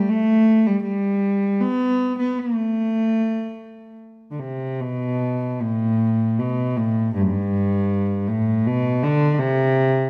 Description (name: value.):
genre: celtic folk.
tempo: 78 BPM.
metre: 3/4.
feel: rubato.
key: A minor.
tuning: A4 = 445 Hz.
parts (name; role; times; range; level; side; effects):
dark cello; solo; 0.0-10.1 s; F#2 to B3; -21 LUFS; equal; none.
room: moderate recital hall reverb, RT60 1.6 s.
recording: none.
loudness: -21 LUFS.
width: mono.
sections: 0.0-4.8 A section; 4.8-10.1 B section.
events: none.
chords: none.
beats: | 0.11 0.86 1.61 | 2.39 3.17 3.98 | 4.79 5.59 6.37 | 7.13 7.89 8.65 | 9.40.